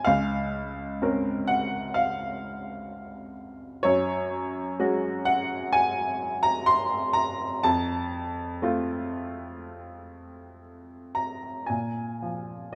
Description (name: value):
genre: classical, lyrical solo piano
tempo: 57-64 BPM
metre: 4/4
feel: rubato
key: Bb minor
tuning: A4 = 440 Hz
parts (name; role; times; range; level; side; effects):
- bright upright piano; solo; 0.0-12.8 s; Db2 to C6; -28 LUFS; equal; none
room: moderate scoring stage reverb, RT60 2.0 s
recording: none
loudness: -27 LUFS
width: mono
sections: 0.0-11.7 A section; 11.7-12.8 B section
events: none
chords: 0.1 Bbmadd9/Db; 3.8 Gbsus2; 7.6 F; 11.7 Bb5